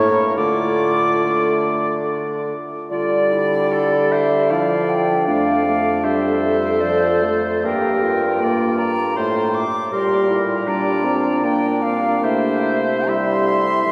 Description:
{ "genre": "classical, slow romantic movement for wind quintet", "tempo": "68-81 BPM", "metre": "3/4", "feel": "rubato", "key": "D minor", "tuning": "A4 = 438 Hz", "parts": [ { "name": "concert flute", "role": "melody", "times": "0.0-13.9 s", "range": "D5 to D6", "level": "-24 LUFS", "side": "equal", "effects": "none" }, { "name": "clear oboe", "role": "second line", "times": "0.0-13.9 s", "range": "A4 to E5", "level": "-28 LUFS", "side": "equal", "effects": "none" }, { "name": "clear French horn", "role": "accompaniment", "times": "0.0-13.9 s", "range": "F3 to C4", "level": "-26 LUFS", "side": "equal", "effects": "none" }, { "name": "warm clarinet", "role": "accompaniment", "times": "0.0-13.9 s", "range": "D4 to A4", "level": "-26 LUFS", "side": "equal", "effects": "none" }, { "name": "clear bassoon", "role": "bass", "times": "0.0-13.9 s", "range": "F2 to E3", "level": "-25 LUFS", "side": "equal", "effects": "none" } ], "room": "wet cathedral reverb, RT60 5.6 s", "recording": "heard from further back in the room", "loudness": "-19 LUFS", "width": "mono", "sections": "0.0-2.9 A section; 2.9-13.9 B section", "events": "none", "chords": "0.4 Dm; 5.3 Dm/F; 7.6 Gm7; 9.9 Gm/Bb; 12.2 C" }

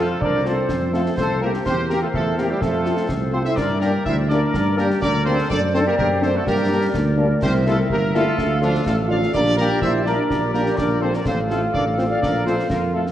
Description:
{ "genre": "military-style march for wind band", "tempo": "125 BPM", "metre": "2/4", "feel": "straight", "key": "F major", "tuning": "A4 = 440 Hz", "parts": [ { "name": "bright trumpet section", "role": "melody", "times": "0.0-13.0 s", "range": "F4 to F5", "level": "-27 LUFS", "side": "equal", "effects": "none" }, { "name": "flute section", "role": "second line", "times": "0.0-13.0 s", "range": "D4 to D5", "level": "-26 LUFS", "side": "left 2 dB", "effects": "none" }, { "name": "warm euphonium", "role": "second line", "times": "0.0-13.1 s", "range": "F3 to F4", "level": "-25 LUFS", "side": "right 3 dB", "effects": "none" }, { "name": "warm woodwind section", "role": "second line", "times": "0.0-13.1 s", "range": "G4 to F5", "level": "-26 LUFS", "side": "left 1 dB", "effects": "none" }, { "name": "warm French horn section", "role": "accompaniment", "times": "0.0-13.0 s", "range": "F3 to G4", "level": "-27 LUFS", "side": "left 3 dB", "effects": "none" }, { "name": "dark tuba", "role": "bass", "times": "0.0-13.1 s", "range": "G1 to G2", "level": "-22 LUFS", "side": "right 1 dB", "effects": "none" }, { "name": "concert bass drum, concert snare drum and clash cymbals", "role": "drums", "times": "0.2-13.1 s", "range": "none", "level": "-29 LUFS", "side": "equal", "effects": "none" } ], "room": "wet scoring stage reverb, RT60 1.6 s", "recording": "worn, warbling old tape, cassette tape, warbly pitch drift", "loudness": "-17 LUFS", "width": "side -11 dB against mid", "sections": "0.0-13.1 A section", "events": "none", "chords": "0.0 F; 1.7 C7/E; 2.6 F; 3.6 Gm; 5.5 D7/F#; 6.5 Gm; 7.4 C7; 8.4 Dm; 9.3 Gm/Bb; 11.3 F/A; 12.2 Bb5" }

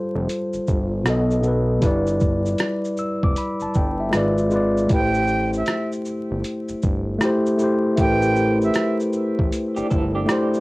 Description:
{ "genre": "lo-fi hip hop", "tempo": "78 BPM", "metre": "4/4", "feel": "swing 64% on 16ths", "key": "A minor", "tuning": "A4 = 438 Hz", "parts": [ { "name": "mellow tine electric piano", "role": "accompaniment", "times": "0.0-10.6 s", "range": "B2 to E6", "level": "-20 LUFS", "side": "left 1 dB", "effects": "cassette tape" }, { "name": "fat analog bass", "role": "bass", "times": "0.2-10.3 s", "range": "F1 to B1", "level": "-25 LUFS", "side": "equal", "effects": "none" }, { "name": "dusty soul sampler-style drum kit", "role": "drums", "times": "0.3-10.6 s", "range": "hi-hat, kick drum, rim click, shaker", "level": "-23 LUFS", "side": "equal", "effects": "overdrive, vintage 12-bit sampler grit" }, { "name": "breathy concert flute", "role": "melody", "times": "4.9-9.0 s", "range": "E5 to G5", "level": "-25 LUFS", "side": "right 3 dB", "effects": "cassette tape" }, { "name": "electric guitar through a small old amp", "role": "second line", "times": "9.8-10.6 s", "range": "D4 to A4", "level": "-27 LUFS", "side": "right 3 dB", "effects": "tremolo, cassette tape" } ], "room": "light reverb", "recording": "home recording on cassette, vinyl crackle", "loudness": "-18 LUFS", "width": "side -21 dB against mid", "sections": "0.0-10.6 A section", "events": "none", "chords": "0.0 G9sus4; 1.1 B7; 1.8 Em7/G; 4.1 G#dim7; 4.9 Am7" }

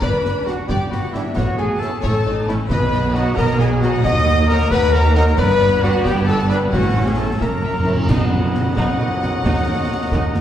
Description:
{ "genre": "cinematic, heroic adventure film score", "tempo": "89 BPM (dotted quarters)", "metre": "6/8", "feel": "straight", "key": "unclear", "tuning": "A4 = 436 Hz", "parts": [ { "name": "warm symphonic violin section", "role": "melody", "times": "0.0-10.4 s", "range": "E4 to F#5", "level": "-31 LUFS", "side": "left 3 dB", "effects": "none" }, { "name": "clear clarinet", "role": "second line", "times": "0.0-10.4 s", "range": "E4 to D#5", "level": "-29 LUFS", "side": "equal", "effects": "none" }, { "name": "hollow small flute group", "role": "second line", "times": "0.0-10.4 s", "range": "E5 to D#6", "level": "-31 LUFS", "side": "equal", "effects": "none" }, { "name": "warm symphonic violin section", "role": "second line", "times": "0.0-10.4 s", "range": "D#5 to D#6", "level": "-31 LUFS", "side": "left 2 dB", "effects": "none" }, { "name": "warm symphonic viola section", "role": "accompaniment", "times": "0.0-10.4 s", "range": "A#3 to B4", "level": "-29 LUFS", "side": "right 1 dB", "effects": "none" }, { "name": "mellow French horn section", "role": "sustained chords", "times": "0.0-10.4 s", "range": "A#3 to D#5", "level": "-23 LUFS", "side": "left 3 dB", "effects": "none" }, { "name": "mellow trumpet", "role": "stabs", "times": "0.0-10.4 s", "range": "E4 to F#5", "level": "-26 LUFS", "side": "equal", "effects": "none" }, { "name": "warm symphonic cello section", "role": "bass", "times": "0.0-10.4 s", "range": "D#2 to B2", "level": "-22 LUFS", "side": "right 1 dB", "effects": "none" }, { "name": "warm symphonic double bass section", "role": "bass", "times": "0.0-10.4 s", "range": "F#1 to D#2", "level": "-22 LUFS", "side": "right 1 dB", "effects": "none" }, { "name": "concert snare drum, clash cymbals and concert bass drum", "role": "drums", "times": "0.0-10.4 s", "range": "none", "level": "-24 LUFS", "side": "equal", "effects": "none" }, { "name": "warm trombone section", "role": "sustained chords", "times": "0.5-10.4 s", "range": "D#3 to D#4", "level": "-31 LUFS", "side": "right 1 dB", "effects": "none" }, { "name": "timpani", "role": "percussion", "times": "2.7-3.3, 7.4-8.7 s", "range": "F#2 to B2", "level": "-23 LUFS", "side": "equal", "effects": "none" }, { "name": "cymbal swell and tam-tam", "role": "percussion", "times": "5.4-9.9 s", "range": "none", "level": "-32 LUFS", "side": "equal", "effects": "none" }, { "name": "clear oboe", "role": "second line", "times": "8.1-10.4 s", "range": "D#5", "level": "-31 LUFS", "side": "right 1 dB", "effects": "none" } ], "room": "wet scoring stage reverb, RT60 1.6 s", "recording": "heard from further back in the room", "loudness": "-15 LUFS", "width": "side -10 dB against mid", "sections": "0.0-8.1 A section; 8.1-10.4 B section", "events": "timpani fill 7.4-8.1; build-up 8.1-10.4; band accent 8.1-8.5", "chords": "0.0 G; 1.4 A; 2.7 B; 4.0 D#m; 5.4 G; 6.7 A; 7.4 F#7; 8.1 B; 9.4 D#m" }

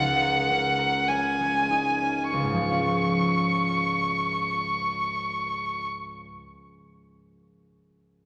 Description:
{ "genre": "classical, impressionist duo for violin and harp", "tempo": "49 BPM", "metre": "4/4", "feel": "rubato", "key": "Db major", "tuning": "A4 = 443 Hz", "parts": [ { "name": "rich violin", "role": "melody", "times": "0.0-5.9 s", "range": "Gb5 to Db6", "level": "-27 LUFS", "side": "equal", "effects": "none" }, { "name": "concert harp", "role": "accompaniment", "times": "0.0-6.4 s", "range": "Db2 to Bb4", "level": "-30 LUFS", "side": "equal", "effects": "none" } ], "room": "wet concert hall reverb, RT60 2.3 s", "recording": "none", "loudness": "-25 LUFS", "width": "mono", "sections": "0.0-2.3 A section; 2.3-7.3 B section", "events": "slowing down 0.0-2.3", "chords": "0.0 Ab11/Db; 2.3 Db" }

